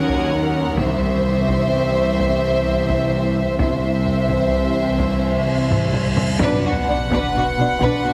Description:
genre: cinematic, suspense film score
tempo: 64 BPM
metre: 3/4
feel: straight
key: unclear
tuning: A4 = 439 Hz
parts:
  - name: warm symphonic violin section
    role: melody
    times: 0.0-8.1 s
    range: E5 to F#5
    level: -27 LUFS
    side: equal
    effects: none
  - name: warm studio violin section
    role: second line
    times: 0.0-8.1 s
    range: D4 to C5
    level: -28 LUFS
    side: equal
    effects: none
  - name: dark symphonic viola section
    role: accompaniment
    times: 0.0-8.1 s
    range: C4 to D4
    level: -31 LUFS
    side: equal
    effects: none
  - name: mellow French horn section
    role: sustained chords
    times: 0.0-6.8 s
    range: E3 to C5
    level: -28 LUFS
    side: equal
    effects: none
  - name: concert harp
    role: riff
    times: 0.0-8.1 s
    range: B2 to D#4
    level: -30 LUFS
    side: equal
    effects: none
  - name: rich symphonic cello section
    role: bass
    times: 0.0-8.1 s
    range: C2 to B2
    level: -27 LUFS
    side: equal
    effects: none
  - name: warm symphonic double bass section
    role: bass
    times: 0.0-7.9 s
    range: B1 to D#2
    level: -28 LUFS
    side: equal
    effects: none
  - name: swarming drone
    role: drone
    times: 0.0-8.1 s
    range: B1 to D#2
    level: -31 LUFS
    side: equal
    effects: built-in reverb
  - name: felt-muted upright piano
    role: texture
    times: 0.0-8.1 s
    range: none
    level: barely audible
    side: none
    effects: none
  - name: warm studio violin section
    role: texture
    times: 0.0-0.3, 6.4-8.1 s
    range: B5 to A6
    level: -39 LUFS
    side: equal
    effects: none
  - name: taiko ensemble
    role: drums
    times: 0.1-8.1 s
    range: none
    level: -28 LUFS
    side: equal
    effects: none
  - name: cymbal swell and sub drop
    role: sound effects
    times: 5.2-8.1 s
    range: none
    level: -31 LUFS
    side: equal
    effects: none
  - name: timpani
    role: percussion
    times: 6.4-7.8 s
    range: B2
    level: -32 LUFS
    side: equal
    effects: none
room: wet scoring stage reverb, RT60 1.6 s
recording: heavily compressed radio sound, multiband compression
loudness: -19 LUFS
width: mono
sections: 0.0-6.4 A section; 6.4-8.1 B section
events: cymbal swell 5.2-6.4; drum fill 5.7-6.4; impact 6.4-8.1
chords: 0.0 D#m7; 0.8 C; 6.4 Bm

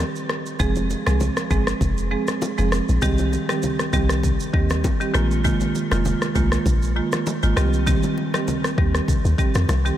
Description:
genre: afrobeats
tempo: 99 BPM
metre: 4/4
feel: swing 55% on 16ths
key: C minor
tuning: A4 = 441 Hz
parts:
  - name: deep log drum bass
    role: bass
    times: 0.0-9.9 s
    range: F1 to F2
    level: -21 LUFS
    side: equal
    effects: none
  - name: deep house drum kit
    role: drums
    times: 0.2-10.0 s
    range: kick drum, rim click, shaker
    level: -24 LUFS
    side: left 1 dB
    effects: none
  - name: marimba with hard mallets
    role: accompaniment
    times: 0.6-10.0 s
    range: Eb3 to Ab4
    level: -23 LUFS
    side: right 2 dB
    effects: none
  - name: congas and bongos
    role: percussion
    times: 0.6-9.8 s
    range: none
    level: -32 LUFS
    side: left 2 dB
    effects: none
room: moderate cathedral reverb, RT60 6.2 s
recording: dreamy mix soaked in reverb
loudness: -18 LUFS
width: side -12 dB against mid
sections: 0.0-10.0 A section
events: none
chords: 0.0 N.C.; 0.6 Fm; 3.0 Cm; 5.1 Bb7sus4; 7.6 Cm

